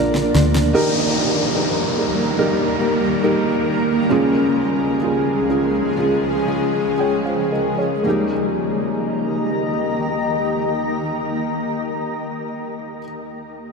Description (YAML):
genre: pop ballad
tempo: 54-74 BPM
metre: 4/4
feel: straight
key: Eb major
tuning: A4 = 440 Hz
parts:
  - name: felt-muted upright piano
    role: accompaniment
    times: 0.0-13.7 s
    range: Db2 to G5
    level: -21 LUFS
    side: right 2 dB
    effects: none
  - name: shimmering ambient pad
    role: sustained chords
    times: 0.0-13.0 s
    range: Db2 to Bb5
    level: -20 LUFS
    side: left 1 dB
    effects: chorus, built-in reverb
  - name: nylon-string guitar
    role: arpeggios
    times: 0.0-13.1 s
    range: Bb2 to Bb4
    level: -29 LUFS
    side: left 6 dB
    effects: none
  - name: vintage muted fingered electric bass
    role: bass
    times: 0.0-0.7 s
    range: Bb1 to D2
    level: -19 LUFS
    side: equal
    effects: none
  - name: electronic snare drum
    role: drums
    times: 0.1-0.7 s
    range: none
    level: -26 LUFS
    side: equal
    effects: none
  - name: downlifter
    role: sound effects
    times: 0.7-8.1 s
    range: none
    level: -26 LUFS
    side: left 1 dB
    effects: none
room: wet huge ambient reverb, RT60 8.1 s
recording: dreamy mix soaked in reverb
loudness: -17 LUFS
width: side -4 dB against mid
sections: 0.7-8.1 A section; 8.1-12.5 B section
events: drum fill 0.0-0.7; slowing down 0.7-8.1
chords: 0.0 Bb; 0.7 Eb; 4.1 Db; 8.1 Eb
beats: | 0.74 1.56 2.38 3.23 | 4.11 5.02 5.97 6.98 | 8.05 9.16 10.28 11.39